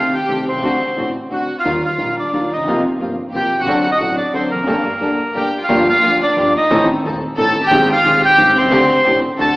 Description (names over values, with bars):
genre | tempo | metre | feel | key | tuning
tango | 178 BPM | 3/4 | rubato | G minor | A4 = 440 Hz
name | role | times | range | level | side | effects
bandoneon | melody | 0.0-9.6 s | Bb4 to A5 | -16 LUFS | equal | none
clear studio violin section | second line | 0.0-9.6 s | Bb3 to A4 | -22 LUFS | left 1 dB | none
warm concert grand piano | accompaniment | 0.0-9.5 s | Eb1 to A4 | -19 LUFS | left 1 dB | none
rich studio string section | stabs | 0.0-9.5 s | G3 to A4 | -24 LUFS | right 1 dB | none
upright bass | bass | 0.0-9.5 s | E1 to Eb2 | -32 LUFS | equal | none
room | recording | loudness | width
wet recital hall reverb, RT60 1.4 s | recorded in a church or concert hall, AM radio sound | -13 LUFS | side -21 dB against mid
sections
0.0-5.7 A section; 5.7-9.6 B section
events
none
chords
0.0 Am7b5/C; 0.6 D7; 1.7 Ebadd9; 2.7 C7sus4; 3.7 D7; 4.7 Gmadd9; 5.7 Gm7; 6.7 Adim; 7.7 Abmaj7; 8.7 D7sus4